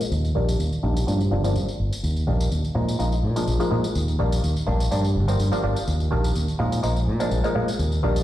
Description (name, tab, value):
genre	filtered disco house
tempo	125 BPM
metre	4/4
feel	swing 53% on 16ths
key	Eb major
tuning	A4 = 439 Hz
part	muted clav	accompaniment	0.0-8.2 s	Eb3 to Eb4	-26 LUFS	equal	phaser, vintage 12-bit sampler grit, low-pass filter
part	tambourine	drums	0.0-8.2 s	none	-37 LUFS	left 1 dB	none
part	modern bright fingered electric bass	bass	0.1-8.2 s	G1 to Bb2	-22 LUFS	equal	low-pass filter
part	tambourine	percussion	2.0-8.2 s	none	barely audible	none	none
room	light reverb, digital ambience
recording	played on a big sound system in a bare room, large studio reverb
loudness	-20 LUFS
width	side -13 dB against mid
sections	0.0-8.2 A section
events	filter sweep 0.0-8.2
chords	0.1 Ebmaj7; 1.1 Gm7; 2.0 Ebmaj7; 2.8 Bb7sus4; 4.0 Ebmaj7; 4.9 Gm7; 5.9 Ebmaj7; 6.6 Bb7sus4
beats	| 0.11 0.59 1.07 1.55 | 2.03 2.51 2.99 3.47 | 3.95 4.43 4.91 5.39 | 5.87 6.35 6.83 7.31 | 7.79